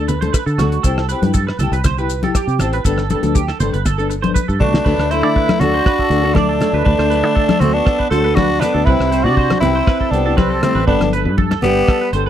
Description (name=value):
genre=highlife guitar band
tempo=120 BPM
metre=4/4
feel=straight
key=D mixolydian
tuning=A4 = 440 Hz
part: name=nylon-string guitar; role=accompaniment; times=0.0-12.3 s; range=F#3 to A4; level=-23 LUFS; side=left 5 dB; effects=none
part: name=clean electric guitar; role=arpeggios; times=0.0-12.3 s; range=F#4 to D5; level=-23 LUFS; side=right 9 dB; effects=analog chorus, slapback echo
part: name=fingered electric bass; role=bass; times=0.0-12.3 s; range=G1 to D3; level=-19 LUFS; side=equal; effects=none
part: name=cloth-damped thuddy drum kit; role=drums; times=0.1-12.3 s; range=crash cymbal, hi-hat, kick drum, rim click, snare drum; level=-18 LUFS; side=equal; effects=none
part: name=congas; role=percussion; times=0.1-11.7 s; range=none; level=-21 LUFS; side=left 3 dB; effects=none
part: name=maracas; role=percussion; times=0.1-4.8 s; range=none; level=-31 LUFS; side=left 17 dB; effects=none
part: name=growling tenor saxophone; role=melody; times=4.6-12.1 s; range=B3 to A4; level=-17 LUFS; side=left 3 dB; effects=none
part: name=warm alto saxophone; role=second line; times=4.6-12.1 s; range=G3 to F#4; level=-21 LUFS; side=right 10 dB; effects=none
room=studio reverb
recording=dry, close 1970s-style studio recording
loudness=-13 LUFS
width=side -10 dB against mid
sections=0.0-4.9 A section; 4.9-12.3 B section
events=drum fill 4.4-4.9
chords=0.0 D; 0.8 C; 2.8 Gadd9; 4.9 D; 8.9 C; 10.9 Gadd9